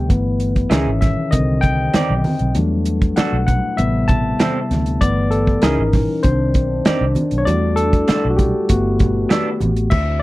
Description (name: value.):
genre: lush 1970s-style soul.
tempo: 98 BPM.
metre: 4/4.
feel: straight.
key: G major.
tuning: A4 = 440 Hz.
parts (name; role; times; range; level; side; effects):
barky tine electric piano; accompaniment; 0.0-10.2 s; C3 to A5; -19 LUFS; left 2 dB; overdrive.
dark French horn section; sustained chords; 0.0-10.2 s; C3 to B4; -29 LUFS; right 1 dB; none.
vintage muted fingered electric bass; bass; 0.0-10.2 s; G1 to E2; -20 LUFS; equal; none.
warm soul drum kit; drums; 0.1-10.1 s; crash cymbal, hi-hat, kick drum, snare drum; -17 LUFS; equal; none.
congas; percussion; 0.1-10.1 s; none; -27 LUFS; right 3 dB; none.
electric guitar through a small old amp; riff; 0.7-9.5 s; E3 to D#5; -22 LUFS; right 4 dB; none.
room: little or no reverb.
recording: dry, close 1970s-style studio recording.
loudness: -15 LUFS.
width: side -18 dB against mid.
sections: 0.0-9.9 A section.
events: tine electric piano solo 0.0-9.9.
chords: 0.1 G6; 0.7 C#madd9; 1.3 Cmadd9; 2.6 Em11; 3.8 Am7; 5.0 G6; 5.6 C#madd9; 6.2 Cmadd9; 7.5 Em11; 8.7 Gmaj9.